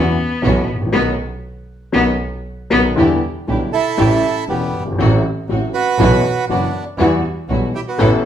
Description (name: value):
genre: tango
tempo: 120 BPM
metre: 4/4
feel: rubato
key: E minor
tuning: A4 = 438 Hz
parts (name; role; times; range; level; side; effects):
- warm cello; second line; 0.0-2.9 s; B3; -19 LUFS; left 2 dB; none
- warm upright piano; accompaniment; 0.0-8.2 s; E1 to A4; -18 LUFS; left 2 dB; none
- dark chamber string section; stabs; 0.0-8.2 s; G3 to A4; -24 LUFS; right 2 dB; none
- clear double bass; bass; 0.0-8.2 s; E1 to E2; -20 LUFS; right 1 dB; none
- bandoneon; melody; 3.7-8.1 s; G3 to B4; -18 LUFS; right 5 dB; none
room: wet large studio reverb, RT60 0.9 s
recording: band playing live in one room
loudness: -14 LUFS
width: side -10 dB against mid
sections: 0.0-3.0 A section; 3.0-8.3 B section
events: cello solo 0.0-3.0; band accent 0.9-3.0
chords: 0.0 Esus2; 0.9 B; 3.0 Em7; 4.0 A7; 5.0 F#dim/A; 6.0 Bsus4; 7.0 Emadd9